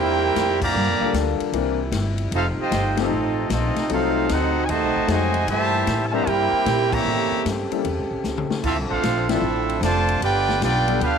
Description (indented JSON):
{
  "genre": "jazz, big band swing",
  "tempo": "152 BPM",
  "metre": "4/4",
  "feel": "swing 66% on 8ths",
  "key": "C major",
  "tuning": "A4 = 440 Hz",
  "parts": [
    { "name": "bright trumpet section", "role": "melody", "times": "0.0-11.2 s", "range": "C4 to Bb5", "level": "-23 LUFS", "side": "equal", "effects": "none" },
    { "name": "warm trombone section", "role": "second line", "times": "0.0-11.2 s", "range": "Bb2 to G4", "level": "-26 LUFS", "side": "right 12 dB", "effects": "slapback echo" },
    { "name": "clear concert grand piano", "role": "accompaniment", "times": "0.0-11.0 s", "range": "E3 to Bb4", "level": "-26 LUFS", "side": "left 13 dB", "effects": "none" },
    { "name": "mellow trombone section", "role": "sustained chords", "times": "0.0-11.2 s", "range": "Bb2 to A4", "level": "-29 LUFS", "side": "left 1 dB", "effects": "none" },
    { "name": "upright bass", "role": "bass", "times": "0.0-11.2 s", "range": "F1 to Bb2", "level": "-26 LUFS", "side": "equal", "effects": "none" },
    { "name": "swinging big-band drum kit", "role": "drums", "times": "0.4-11.1 s", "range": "crash cymbal, hi-hat, kick drum, ride cymbal, snare drum, toms", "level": "-29 LUFS", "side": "left 6 dB", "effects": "none" }
  ],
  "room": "moderate spring reverb, RT60 1.3 s, studio ambience",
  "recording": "1960s-style stereo with parts hard left and right",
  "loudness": "-19 LUFS",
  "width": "side -7 dB against mid",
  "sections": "0.0-11.2 A section",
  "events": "band accent 0.5, 2.9, 6.9, 9.2; drum fill 8.2-8.6",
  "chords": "0.0 C7; 0.7 Gm7; 1.5 C7; 2.3 F7; 3.9 F#dim7; 5.5 C7; 7.1 A7b9; 8.6 Dm7; 10.2 G7"
}